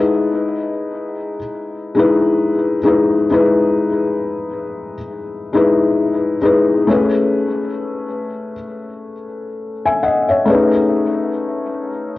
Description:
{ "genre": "hip hop", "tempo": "67 BPM", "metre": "4/4", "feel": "swing 59% on 16ths", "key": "E major", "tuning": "A4 = 441 Hz", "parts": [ { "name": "felt-muted upright piano", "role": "solo", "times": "0.0-12.2 s", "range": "G#3 to G#5", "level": "-15 LUFS", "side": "left 2 dB", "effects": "cassette tape, low-pass filter, tape echo" } ], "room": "wet spring reverb, RT60 2.7 s", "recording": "home recording on cassette", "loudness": "-14 LUFS", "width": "side -16 dB against mid", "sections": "0.0-12.2 A section", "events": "none", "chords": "0.0 Emaj7; 6.9 Amaj9; 10.5 B13" }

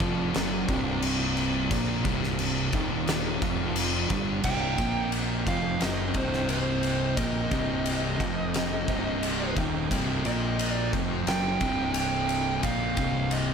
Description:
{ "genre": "stoner and doom metal", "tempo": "88 BPM", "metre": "4/4", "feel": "straight", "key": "C minor", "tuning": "A4 = 441 Hz", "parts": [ { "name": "tonewheel organ", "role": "sustained chords", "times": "0.0-13.5 s", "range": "C4 to G5", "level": "-38 LUFS", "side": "left 1 dB", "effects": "slow rotary speaker" }, { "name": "thick fuzz guitar", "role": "riff", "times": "0.0-13.5 s", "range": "C2 to Bb3", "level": "-31 LUFS", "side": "left 10 dB", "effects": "distortion" }, { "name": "thick fuzz guitar", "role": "riff", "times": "0.0-13.5 s", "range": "C2 to Bb3", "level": "-31 LUFS", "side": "right 11 dB", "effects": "distortion" }, { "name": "fuzz fingered electric bass", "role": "bass", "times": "0.0-13.5 s", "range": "C1 to Bb1", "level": "-33 LUFS", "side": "equal", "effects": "overdrive" }, { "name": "oversized low-tuned drum kit", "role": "drums", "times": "0.0-13.5 s", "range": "crash cymbal, kick drum, ride cymbal, snare drum", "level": "-30 LUFS", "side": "left 1 dB", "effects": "none" }, { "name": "fuzz lead guitar", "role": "melody", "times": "4.5-13.5 s", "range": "C5 to G5", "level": "-32 LUFS", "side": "right 3 dB", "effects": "distortion" } ], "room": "light reverb", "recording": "none", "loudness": "-24 LUFS", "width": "side -6 dB against mid", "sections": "0.0-4.4 A section; 4.4-13.5 B section", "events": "none", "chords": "0.0 Cm" }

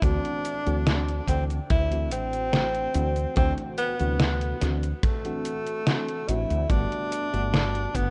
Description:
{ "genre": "vaporwave", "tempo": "72 BPM", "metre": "4/4", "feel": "straight", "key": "unclear", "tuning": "A4 = 439 Hz", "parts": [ { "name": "breathy tenor saxophone", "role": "melody", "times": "0.0-8.1 s", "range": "A3 to E4", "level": "-31 LUFS", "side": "equal", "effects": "vintage 12-bit sampler grit, tape echo" }, { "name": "mellow FM electric piano", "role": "accompaniment", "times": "0.0-8.1 s", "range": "C3 to F#4", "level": "-35 LUFS", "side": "equal", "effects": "analog chorus, vintage 12-bit sampler grit" }, { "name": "woody fretless electric bass", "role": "bass", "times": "0.0-8.1 s", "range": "G1 to D2", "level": "-30 LUFS", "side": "equal", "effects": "tube saturation, subtle chorus" }, { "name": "detuned 8-bit digital drum machine", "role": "drums", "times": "0.0-8.1 s", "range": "cabasa, hi-hat, snare drum", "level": "-29 LUFS", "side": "equal", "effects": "overdrive, vintage 12-bit sampler grit" }, { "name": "kick drum", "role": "drums", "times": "0.0-8.1 s", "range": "none", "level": "-29 LUFS", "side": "equal", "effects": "vintage 12-bit sampler grit" } ], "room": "light reverb, small room ambience", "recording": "rough home demo mix, cassette tape, nothing above 10.7 kHz", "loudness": "-26 LUFS", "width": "mono", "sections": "0.0-8.1 A section", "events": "none", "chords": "0.0 D9; 6.7 Gmaj9" }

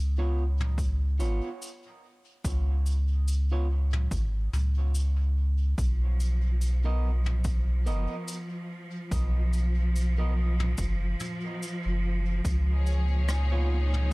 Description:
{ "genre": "ambient dub", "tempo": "72 BPM", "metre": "4/4", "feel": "swing 57% on 16ths", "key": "unclear", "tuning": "A4 = 440 Hz", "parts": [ { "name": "soft dub sub bass", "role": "bass", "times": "0.0-14.1 s", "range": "Gb1 to Db2", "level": "-25 LUFS", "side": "equal", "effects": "none" }, { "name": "electric guitar at the edge of break-up", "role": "stabs", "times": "0.2-13.8 s", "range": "Cb4 to Eb5", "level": "-40 LUFS", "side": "right 2 dB", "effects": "dub echo" }, { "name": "vintage brush drum kit", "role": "drums", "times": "0.6-14.1 s", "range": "cabasa, rim click, toms", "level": "-40 LUFS", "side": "equal", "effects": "dub echo" }, { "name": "electronic kick drum", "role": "drums", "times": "0.8-12.6 s", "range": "none", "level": "-32 LUFS", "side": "equal", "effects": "overdrive" }, { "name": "clear symphonic string section", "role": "sustained chords", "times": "5.8-14.1 s", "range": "Bb2 to Db5", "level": "-35 LUFS", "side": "equal", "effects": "none" } ], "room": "little or no reverb", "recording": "echo-heavy mix", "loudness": "-25 LUFS", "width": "side -24 dB against mid", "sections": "0.0-14.1 A section", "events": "none", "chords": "0.0 N.C.; 5.8 Cb5; 12.4 Db7" }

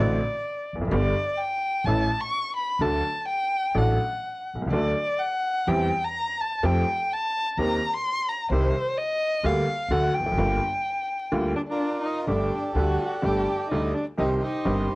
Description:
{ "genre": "tango", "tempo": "127 BPM", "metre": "4/4", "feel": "rubato", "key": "G minor", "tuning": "A4 = 440 Hz", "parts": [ { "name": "warm violin", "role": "second line", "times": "0.0-14.8 s", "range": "D4 to C#6", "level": "-26 LUFS", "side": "left 1 dB", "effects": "cassette tape" }, { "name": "bright upright piano", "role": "accompaniment", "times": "0.0-14.9 s", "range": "G1 to A4", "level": "-26 LUFS", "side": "equal", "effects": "cassette tape" }, { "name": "upright bass", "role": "bass", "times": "0.0-14.8 s", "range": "E1 to F2", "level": "-27 LUFS", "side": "equal", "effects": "none" }, { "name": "bandoneon", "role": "melody", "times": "11.6-15.0 s", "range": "F4 to G5", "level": "-30 LUFS", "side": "right 1 dB", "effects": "cassette tape" } ], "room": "light reverb", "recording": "home recording on cassette, vinyl crackle, lossy compression artefacts", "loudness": "-23 LUFS", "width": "side -22 dB against mid", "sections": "0.0-12.3 A section; 12.3-15.0 B section", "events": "violin solo 0.0-12.3", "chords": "0.0 D7/A; 0.9 G; 1.9 A; 2.8 D; 5.7 C/E; 6.6 Fadd9; 7.6 Eb6; 8.5 Cm; 9.4 Gm/D; 9.9 D; 10.4 Gm7; 12.3 Gsus2; 14.2 Cm" }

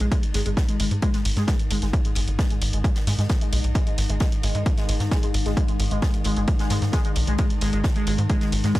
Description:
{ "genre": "driving peak-time techno", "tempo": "132 BPM", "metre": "4/4", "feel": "straight", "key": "G# minor", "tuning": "A4 = 439 Hz", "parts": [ { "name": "overdriven synth lead", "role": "riff", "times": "0.0-8.8 s", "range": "G#3", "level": "-29 LUFS", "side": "equal", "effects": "distortion, phaser, tube saturation, analog chorus, sidechain pumping, tape echo" }, { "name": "tight sequencer bass", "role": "bass", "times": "0.0-8.7 s", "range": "G#1 to G#2", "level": "-23 LUFS", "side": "equal", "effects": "sidechain pumping" }, { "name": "metallic inharmonic drone", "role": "drone", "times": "0.0-8.8 s", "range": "G#2 to D#3", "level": "-32 LUFS", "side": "left 2 dB", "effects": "chorus, built-in reverb, sidechain pumping" }, { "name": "electronic hi-hat", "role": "drums", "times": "0.0-8.8 s", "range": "none", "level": "-33 LUFS", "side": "right 1 dB", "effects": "none" }, { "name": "open jazz drum kit", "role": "drums", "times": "0.0-8.8 s", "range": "ride cymbal, snare drum", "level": "-39 LUFS", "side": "left 2 dB", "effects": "sidechain pumping on cymbals, high-pass filter on cymbals, high-pass filter on snare, high-pass filter on room" }, { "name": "electronic kick drum", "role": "drums", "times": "0.1-8.8 s", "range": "none", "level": "-23 LUFS", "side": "equal", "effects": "none" } ], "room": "little or no reverb", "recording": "dry, gritty hardware recording", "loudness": "-20 LUFS", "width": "side -17 dB against mid", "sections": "0.0-8.8 A section", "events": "filter sweep on analog synth lead 0.0-8.8", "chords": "0.0 G#5" }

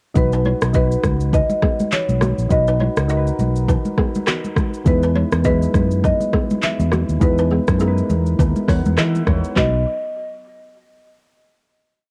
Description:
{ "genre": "afrobeats", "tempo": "102 BPM", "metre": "4/4", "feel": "swing 58% on 16ths", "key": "B major", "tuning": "A4 = 441 Hz", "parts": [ { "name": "soft electric-piano-like synth keys", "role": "accompaniment", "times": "0.1-9.8 s", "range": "F#3 to F#5", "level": "-27 LUFS", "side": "equal", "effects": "chorus, cassette tape" }, { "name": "marimba with medium mallets", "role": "melody", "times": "0.2-9.8 s", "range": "B4 to E5", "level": "-26 LUFS", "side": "equal", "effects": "cassette tape, tape echo" }, { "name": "fingered electric bass", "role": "bass", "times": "0.2-9.8 s", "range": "A#1 to E3", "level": "-21 LUFS", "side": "equal", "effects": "none" }, { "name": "afro-pop drum kit", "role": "drums", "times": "0.2-9.7 s", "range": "handclaps, hi-hat, kick drum, rim click, shaker", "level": "-22 LUFS", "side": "equal", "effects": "cassette tape" }, { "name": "congas", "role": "percussion", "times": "0.2-9.8 s", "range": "none", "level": "-27 LUFS", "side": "equal", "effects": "none" }, { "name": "balafon", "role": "riff", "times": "0.3-9.6 s", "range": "A#3 to D#5", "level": "-30 LUFS", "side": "equal", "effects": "cassette tape, tape echo" } ], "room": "light reverb, small room ambience", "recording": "home recording on cassette", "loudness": "-18 LUFS", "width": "mono", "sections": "0.2-9.6 chorus; 9.6-11.9 final chord", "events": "synth keys fill 8.4-9.6", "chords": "0.2 B; 4.9 Emaj7; 9.6 B" }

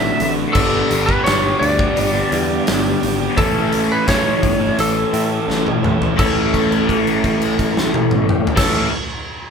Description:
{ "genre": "classic rock", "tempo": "85 BPM", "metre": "4/4", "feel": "straight", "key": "A mixolydian", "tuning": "A4 = 440 Hz", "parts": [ { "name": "lightly driven lead guitar", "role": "melody", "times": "0.0-8.9 s", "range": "A4 to E5", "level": "-21 LUFS", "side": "right 1 dB", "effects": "none" }, { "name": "tonewheel organ", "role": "sustained chords", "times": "0.0-8.9 s", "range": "G3 to A4", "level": "-29 LUFS", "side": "left 4 dB", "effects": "none" }, { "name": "biting overdriven guitar", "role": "riff", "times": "0.0-8.9 s", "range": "G2 to F#4", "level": "-20 LUFS", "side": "left 5 dB", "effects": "phaser" }, { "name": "crunchy overdriven guitar", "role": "riff", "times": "0.0-8.9 s", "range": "G2 to A4", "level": "-22 LUFS", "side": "right 7 dB", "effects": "none" }, { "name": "modern bright picked electric bass", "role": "bass", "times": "0.0-8.9 s", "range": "G1 to A2", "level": "-24 LUFS", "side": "equal", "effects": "none" }, { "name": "big rock drum kit", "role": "drums", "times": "0.2-8.7 s", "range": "crash cymbal, hi-hat, kick drum, snare drum, toms", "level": "-20 LUFS", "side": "equal", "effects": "none" }, { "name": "cowbell", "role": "percussion", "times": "0.6-6.5 s", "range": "none", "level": "-33 LUFS", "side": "left 4 dB", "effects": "none" } ], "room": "moderate large studio reverb, RT60 1.1 s", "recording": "band playing live in one room", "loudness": "-14 LUFS", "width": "side -6 dB against mid", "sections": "0.0-6.2 A section; 6.2-9.0 B section", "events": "drum fill 5.5-6.2; held note 6.2-8.6", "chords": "0.0 Dadd9; 0.6 G; 3.4 A" }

